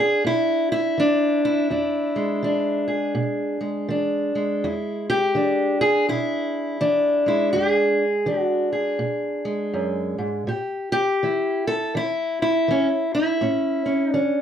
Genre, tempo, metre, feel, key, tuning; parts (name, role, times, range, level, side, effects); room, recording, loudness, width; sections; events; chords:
acoustic country blues, solo or duo; 82 BPM; 4/4; swing 61% on 8ths; E mixolydian; A4 = 439 Hz
fingerpicked steel-string acoustic guitar; solo; 0.0-14.4 s; E2 to A4; -20 LUFS; equal; slapback echo
moderate studio reverb, RT60 0.5 s; -20 LUFS; side -9 dB against mid
0.0-14.4 A section
0.0 E7; 10.5 A7